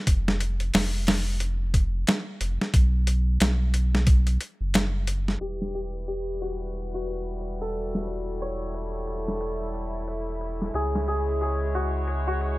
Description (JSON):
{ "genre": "trip hop", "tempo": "90 BPM", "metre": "4/4", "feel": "swing 59% on 16ths", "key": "E dorian from 5.4 s", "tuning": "A4 = 440 Hz", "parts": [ { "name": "warm sub bass", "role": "bass", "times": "0.1-12.6 s", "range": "E1 to C#2", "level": "-27 LUFS", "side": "equal", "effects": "none" }, { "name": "boom bap sampler-style drum kit", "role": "drums", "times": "0.1-12.6 s", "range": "hi-hat, kick drum, snare drum", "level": "-24 LUFS", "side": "equal", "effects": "low-pass filter on hats, low-pass filter on kick, low-pass filter on snare" }, { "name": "santur", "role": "melody", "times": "5.4-12.6 s", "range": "F#4 to C#5", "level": "-32 LUFS", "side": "left 1 dB", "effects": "none" }, { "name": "warm chamber violin section", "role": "sustained chords", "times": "5.4-12.6 s", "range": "G3 to C#5", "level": "-35 LUFS", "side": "equal", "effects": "low-pass filter" } ], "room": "small room ambience", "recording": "low-pass filter", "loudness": "-24 LUFS", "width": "side -20 dB against mid", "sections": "0.0-5.4 A section; 5.4-12.6 B section", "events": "filter sweep on violin section 5.4-12.6; filter sweep 5.4-12.6", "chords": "0.1 N.C.; 2.7 B5; 5.4 Em; 10.7 C#m", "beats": "| 0.07 0.74 1.40 2.07 | 2.74 3.40 4.07 4.74 | 5.40 6.07 6.74 7.40 | 8.07 8.74 9.40 10.07 | 10.74 11.40 12.07" }